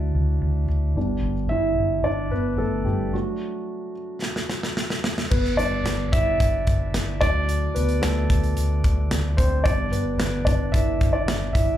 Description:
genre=piano-driven pop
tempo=110 BPM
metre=4/4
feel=straight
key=G major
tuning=A4 = 436 Hz
part: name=dark baby grand piano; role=accompaniment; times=0.0-11.8 s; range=F#3 to F#5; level=-25 LUFS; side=equal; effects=slapback echo
part: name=vintage muted fingered electric bass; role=bass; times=0.0-11.8 s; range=G1 to D2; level=-24 LUFS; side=equal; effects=none
part: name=modern studio drum kit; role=drums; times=4.2-11.7 s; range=crash cymbal, hi-hat, kick drum, snare drum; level=-24 LUFS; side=equal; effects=none
room=light reverb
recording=live gig heard through the venue's PA, club reverb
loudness=-20 LUFS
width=side -12 dB against mid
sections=0.0-5.3 A section; 5.3-11.8 B section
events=grand piano solo 0.0-5.3, 5.3-11.8; stop 3.1-5.3; drum fill 4.2-5.3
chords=0.0 D; 1.0 G; 3.1 D; 5.3 G; 7.2 D; 9.7 G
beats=0.42 | 0.96 1.51 2.05 2.59 | 3.14 3.68 4.22 4.77 | 5.31 5.85 6.39 6.94 | 7.48 8.02 8.57 9.11 | 9.65 10.19 10.74 11.28

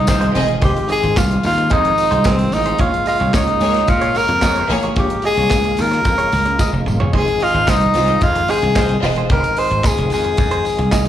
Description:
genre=disco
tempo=110 BPM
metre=4/4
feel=straight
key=F minor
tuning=A4 = 439 Hz
part: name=breathy tenor saxophone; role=melody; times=0.0-11.1 s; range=C4 to C5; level=-17 LUFS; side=left 1 dB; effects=slapback echo
part: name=tonewheel organ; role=sustained chords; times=0.0-11.1 s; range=Db3 to F4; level=-26 LUFS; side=left 1 dB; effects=overdrive, chorus vibrato, slow rotary speaker
part: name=slap bass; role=bass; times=0.0-11.1 s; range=Eb1 to Bb2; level=-19 LUFS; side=equal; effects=none
part: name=direct-recorded clean electric guitar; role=accompaniment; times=0.1-11.1 s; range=Eb4 to Eb5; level=-26 LUFS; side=right 8 dB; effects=slapback echo
part: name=warm horn section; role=stabs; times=0.1-8.9 s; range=Ab3 to Db5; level=-29 LUFS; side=left 2 dB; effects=slapback echo
part: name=modern studio drum kit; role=drums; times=0.1-11.1 s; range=handclaps, hi-hat, kick drum, snare drum, splash cymbal, toms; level=-20 LUFS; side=equal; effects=none
part: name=tambourine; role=percussion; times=0.1-11.1 s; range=none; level=-34 LUFS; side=left 1 dB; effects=none
part: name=warm studio violin section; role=second line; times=0.4-9.3 s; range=Ab3 to Eb5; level=-23 LUFS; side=equal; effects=slapback echo
room=small room ambience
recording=live gig heard through the venue's PA, club reverb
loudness=-14 LUFS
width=side -11 dB against mid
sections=0.0-11.1 A section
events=drum fill 6.6-7.1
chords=0.0 Fm7; 2.8 Bbm7; 7.1 Fm7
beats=0.08 | 0.62 1.16 1.71 2.25 | 2.79 3.34 3.88 4.42 | 4.96 5.51 6.05 6.59 | 7.14 7.68 8.22 8.76 | 9.30 9.85 10.39 10.93

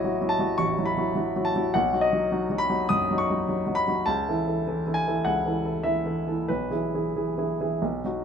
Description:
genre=classical, romantic character piece for solo piano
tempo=89-108 BPM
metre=4/4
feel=rubato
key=E major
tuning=A4 = 440 Hz
part: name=warm grand piano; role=solo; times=0.0-8.2 s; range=A1 to D#6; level=-23 LUFS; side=equal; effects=none
room=light reverb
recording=minimal, uncompressed stereo recording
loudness=-23 LUFS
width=side -7 dB against mid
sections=0.0-8.2 A section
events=none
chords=0.0 F#m7; 1.7 B; 4.1 A/C#; 6.5 E/B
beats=0.04 0.60 1.17 | 1.74 2.31 2.89 3.49 | 4.07 4.65 5.24 5.84 | 6.49 7.14 7.81

